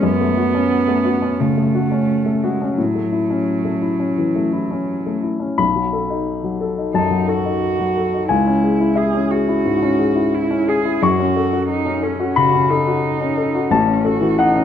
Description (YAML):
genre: neoclassical piano and strings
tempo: 88 BPM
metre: 4/4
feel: rubato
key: unclear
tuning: A4 = 440 Hz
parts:
  - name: muted cello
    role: second line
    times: 0.0-14.6 s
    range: F#3 to G#4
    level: -21 LUFS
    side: right 6 dB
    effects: none
  - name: warm grand piano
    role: accompaniment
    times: 0.0-14.6 s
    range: A1 to C#6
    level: -17 LUFS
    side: left 3 dB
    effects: none
room: wet recital hall reverb, RT60 1.6 s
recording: minimal, uncompressed stereo recording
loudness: -16 LUFS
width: side -9 dB against mid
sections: 0.0-5.6 A section; 5.6-14.6 A section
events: none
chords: 0.0 F#m; 2.8 A6; 5.6 B7; 8.3 C#m; 11.0 F#m; 13.7 A6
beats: | 0.04 0.72 1.40 2.09 | 2.78 3.48 4.19 4.89 | 5.59 6.27 6.95 7.63 | 8.31 8.98 9.66 10.34 | 11.03 11.71 12.38 13.04 | 13.71 14.39